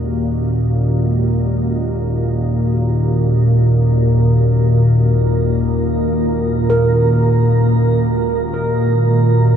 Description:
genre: dark ambient drone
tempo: free time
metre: none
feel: none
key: Eb minor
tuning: A4 = 439 Hz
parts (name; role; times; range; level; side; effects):
- deep dark ambient pad; sustained chords; 0.0-9.6 s; Eb3 to Bb4; -22 LUFS; right 2 dB; chorus, built-in reverb, shimmer reverb
- gamelan-type bossed gongs; arpeggios; 0.0-9.6 s; Eb2 to Bb4; -22 LUFS; right 3 dB; tape echo, shimmer reverb
- organ-like drone; drone; 0.0-9.6 s; Eb2 to Bb2; -14 LUFS; equal; ensemble chorus, built-in reverb
room: wet huge ambient reverb, RT60 8.0 s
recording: none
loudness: -13 LUFS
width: side -8 dB against mid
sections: 0.0-9.6 A section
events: filter sweep on synth drone 0.0-9.6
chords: 0.0 Ebm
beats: free time

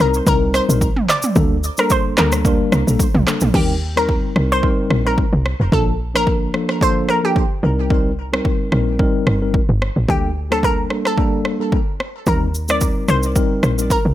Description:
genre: afrobeats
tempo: 110 BPM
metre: 4/4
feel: swing 55% on 16ths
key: unclear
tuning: A4 = 441 Hz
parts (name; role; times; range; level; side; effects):
- analog pluck; melody; 0.0-14.1 s; G4 to D5; -21 LUFS; equal; chorus, digital delay
- mellow tine electric piano; accompaniment; 0.0-14.0 s; F3 to Bb4; -21 LUFS; left 2 dB; medium stereo tremolo
- woody log drum bass; bass; 0.0-14.1 s; F1 to Eb2; -18 LUFS; equal; none
- deep house drum kit; drums; 0.1-14.0 s; crash cymbal, handclaps, kick drum, rim click, shaker, toms; -19 LUFS; equal; overdrive
room: little or no reverb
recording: none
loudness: -15 LUFS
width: side -13 dB against mid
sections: 0.0-3.5 A section; 3.5-14.1 B section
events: hi-hats muted 3.5-12.3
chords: 0.0 Cm7; 1.4 Gmadd9/D; 3.5 Eb6; 5.7 Bbmaj7; 7.6 Cm7; 10.1 Gmadd9/D; 12.3 Eb6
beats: 0.27 0.81 | 1.36 1.90 2.45 3.00 | 3.54 4.08 4.63 5.18 | 5.72 6.27 6.81 7.36 | 7.90 8.45 8.99 9.54 | 10.09 10.63 11.18 11.72 | 12.27 12.81 13.36 13.90

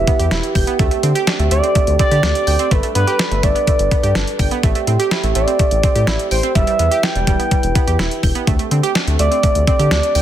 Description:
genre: synth-pop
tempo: 125 BPM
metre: 4/4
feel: straight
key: unclear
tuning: A4 = 439 Hz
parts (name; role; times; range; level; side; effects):
- expressive synth lead; melody; 0.0-10.2 s; B4 to G5; -19 LUFS; right 1 dB; chorus, tape echo
- dark French horn section; sustained chords; 0.0-10.2 s; D3 to B4; -24 LUFS; right 2 dB; stereo widening
- round analog bass; bass; 0.0-10.2 s; E1 to D3; -18 LUFS; left 1 dB; none
- analog pluck; arpeggios; 0.1-10.2 s; G3 to G6; -23 LUFS; right 8 dB; chorus, tape echo
- detuned 8-bit digital drum machine; drums; 0.1-10.2 s; hi-hat, kick drum, snare drum; -18 LUFS; left 1 dB; none
room: light reverb, digital ambience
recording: dense, heavily limited modern master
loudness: -13 LUFS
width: side -11 dB against mid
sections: 0.0-10.2 A section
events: none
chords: 0.0 Em; 0.8 D7sus4; 2.7 Gadd9; 4.6 Am7; 6.6 Em; 8.5 D7sus4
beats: 0.31 | 0.79 1.27 1.75 2.23 | 2.71 3.19 3.67 4.15 | 4.63 5.11 5.59 6.07 | 6.55 7.03 7.51 7.99 | 8.47 8.95 9.43 9.91

